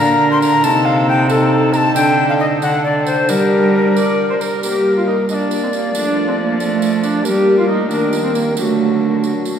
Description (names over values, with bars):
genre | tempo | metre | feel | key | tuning
classical, renaissance-style consort dance | 91 BPM (dotted quarters) | 6/8 | straight | G minor | A4 = 440 Hz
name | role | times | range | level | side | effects
tenor recorder | melody | 0.0-9.5 s | F#4 to C6 | -18 LUFS | left 3 dB | none
warm viola | second line | 0.0-9.2 s | A3 to D5 | -18 LUFS | right 2 dB | none
warm trombone | accompaniment | 0.0-9.6 s | F#3 to Eb4 | -22 LUFS | left 1 dB | none
rich cello | bass | 0.0-9.6 s | C3 to G3 | -19 LUFS | right 2 dB | none
tambourine | percussion | 0.4-9.6 s | none | -32 LUFS | right 6 dB | none
room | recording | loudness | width
wet cathedral reverb, RT60 4.6 s | heard from further back in the room | -13 LUFS | side -8 dB against mid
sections
0.0-4.6 A section; 4.6-9.6 B section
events
none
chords
0.0 Bb; 0.6 Adim/C; 2.0 D5; 3.3 Gm; 5.9 F; 7.3 Gm; 8.6 D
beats
| 0.65 1.30 | 1.96 2.62 | 3.29 3.96 | 4.63 5.29 | 5.95 6.60 | 7.26 7.91 | 8.57 9.23